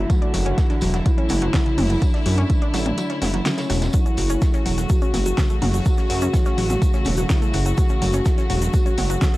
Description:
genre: melodic techno.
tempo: 125 BPM.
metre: 4/4.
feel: straight.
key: F# minor.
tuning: A4 = 439 Hz.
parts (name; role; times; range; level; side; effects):
expressive synth lead; melody; 0.0-9.4 s; C#4 to F#4; -27 LUFS; equal; chorus, sidechain pumping, analog delay.
warm studio string section; sustained chords; 0.0-9.4 s; C#3 to F#4; -29 LUFS; equal; sidechain pumping.
wide unison pluck; arpeggios; 0.0-9.4 s; C#3 to D5; -28 LUFS; equal; sidechain pumping, tape echo.
dark detuned saw bass; bass; 0.0-9.2 s; E1 to F#2; -22 LUFS; equal; tube saturation, sidechain pumping.
deep house drum kit; drums; 0.1-9.4 s; hi-hat, snare drum, toms; -27 LUFS; equal; overdrive.
electronic kick drum; drums; 0.1-9.3 s; none; -20 LUFS; equal; overdrive.
modern studio drum kit; drums; 0.1-9.3 s; hi-hat, snare drum, tambourine; -37 LUFS; right 1 dB; high-pass filter on hats, high-pass filter on snare, high-pass filter on perc, high-pass filter on room.
tube shaker; percussion; 3.9-9.4 s; none; -38 LUFS; equal; none.
room: small room ambience.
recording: dry, gritty hardware recording, cassette tape.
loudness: -17 LUFS.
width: side -18 dB against mid.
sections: 0.0-9.4 A section.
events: break 3.0-3.9.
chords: 0.0 Dadd9; 3.9 F#m.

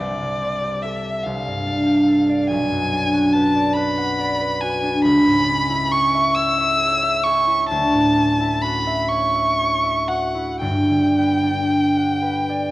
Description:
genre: classical, impressionist duo for violin and harp.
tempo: 36-49 BPM (dotted quarters).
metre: 6/8.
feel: rubato.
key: unclear.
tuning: A4 = 440 Hz.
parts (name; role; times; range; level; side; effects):
rich violin; melody; 0.0-12.7 s; D5 to E6; -20 LUFS; equal; none.
concert harp; accompaniment; 0.0-12.7 s; G1 to F#5; -19 LUFS; equal; none.
room: moderate scoring stage reverb, RT60 1.9 s.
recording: worn, warbling old tape, cassette tape, warbly pitch drift.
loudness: -17 LUFS.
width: side -17 dB against mid.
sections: 0.0-12.7 A section.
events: none.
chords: 0.0 C69; 1.2 G9sus4/C; 2.5 Bm6; 5.0 C#m7; 7.7 Dmaj9; 10.6 Gmaj7.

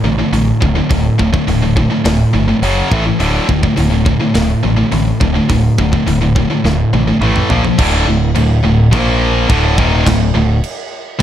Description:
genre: heavy metal.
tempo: 105 BPM.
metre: 4/4.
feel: straight.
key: unclear.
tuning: A4 = 440 Hz.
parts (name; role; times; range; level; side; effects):
heavy high-gain guitar; riff; 0.0-11.2 s; D2 to Bb3; -15 LUFS; left 6 dB; distortion.
heavy high-gain guitar; riff; 0.0-11.2 s; D2 to Bb3; -17 LUFS; right 8 dB; distortion.
growling picked electric bass; bass; 0.0-11.2 s; D1 to Bb1; -16 LUFS; equal; overdrive.
tight metal drum kit; drums; 0.3-11.2 s; crash cymbal, hi-hat, kick drum, snare drum, toms; -19 LUFS; equal; none.
room: little or no reverb.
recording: dark, warm production.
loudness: -11 LUFS.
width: side -10 dB against mid.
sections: 0.0-7.8 A section; 7.8-11.2 B section.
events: drum fill 6.6-7.8; half time 7.8-11.2.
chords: 0.0 D5; 2.6 F#5; 2.9 A5; 3.2 D5; 7.2 A5; 7.5 Bb5; 7.8 D5; 8.9 Bb5; 9.5 D5.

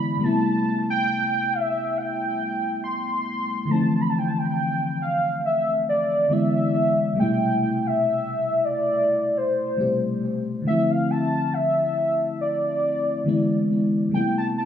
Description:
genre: R&B.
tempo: 69 BPM.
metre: 4/4.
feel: swing 54% on 16ths.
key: A minor.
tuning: A4 = 439 Hz.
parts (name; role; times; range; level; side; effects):
warm velvety synth lead; melody; 0.0-14.7 s; C5 to C6; -23 LUFS; equal; chorus, analog delay.
mellow FM electric piano; accompaniment; 0.0-14.7 s; B2 to G4; -24 LUFS; left 1 dB; chorus, analog delay.
room: light reverb, digital ambience.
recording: echo-heavy mix.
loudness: -20 LUFS.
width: side -9 dB against mid.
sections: 0.0-10.7 A section; 10.7-14.7 B section.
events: none.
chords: 0.2 Am7; 3.7 Dm7; 6.3 E7; 7.2 Am7; 10.7 Dm7; 13.3 E7; 14.1 Am7.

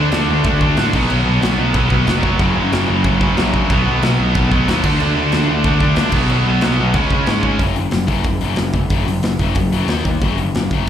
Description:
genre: punk rock.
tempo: 185 BPM.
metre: 4/4.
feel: straight.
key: unclear.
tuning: A4 = 442 Hz.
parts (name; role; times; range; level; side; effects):
distorted electric guitar; riff; 0.0-7.6 s; F#2 to D4; -22 LUFS; right 12 dB; overdrive, slapback echo.
high-gain distorted guitar; riff; 0.0-7.6 s; F#2 to D4; -21 LUFS; right 1 dB; distortion.
tight distorted guitar; riff; 0.0-10.9 s; F#2 to D#4; -21 LUFS; left 8 dB; distortion, slapback echo.
fuzz picked electric bass; bass; 0.0-10.8 s; E#1 to A2; -18 LUFS; equal; overdrive.
big rock drum kit; drums; 0.1-10.8 s; crash cymbal, hi-hat, kick drum, snare drum; -20 LUFS; equal; none.
room: little or no reverb.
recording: live gig heard through the venue's PA, club reverb.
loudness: -14 LUFS.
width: side -9 dB against mid.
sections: 0.0-7.6 A section; 7.6-10.9 B section.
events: none.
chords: 0.0 D5; 0.9 B5; 2.4 F#; 3.7 B5; 4.8 D5; 6.1 B5; 6.9 C#5; 7.6 F#5; 9.9 D#5; 10.2 F#5.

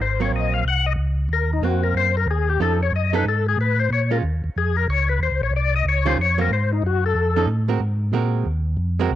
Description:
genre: soul jazz organ trio.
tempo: 184 BPM.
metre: 4/4.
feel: swing 63% on 8ths.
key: Ab mixolydian.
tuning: A4 = 440 Hz.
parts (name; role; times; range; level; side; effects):
percussive tonewheel organ; melody; 0.0-7.5 s; Eb4 to Gb5; -22 LUFS; left 6 dB; slow rotary speaker, overdrive, chorus vibrato, cassette tape.
mellow tonewheel organ; bass; 0.0-9.2 s; Ab1 to Bb2; -21 LUFS; equal; chorus vibrato, slow rotary speaker.
archtop guitar, miked and amplified; accompaniment; 0.2-9.1 s; Eb3 to Bb4; -25 LUFS; right 9 dB; cassette tape.
room: light reverb, digital ambience.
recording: home recording on cassette.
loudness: -18 LUFS.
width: side -12 dB against mid.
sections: 0.0-9.1 A section.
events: tonewheel organ solo 0.0-9.1.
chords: 0.0 Ab9; 2.6 F7alt; 3.9 Bbm7; 5.2 Eb7sus2; 6.5 Gbm69; 7.2 F7alt; 7.8 Ab9; 8.5 Ebsus2.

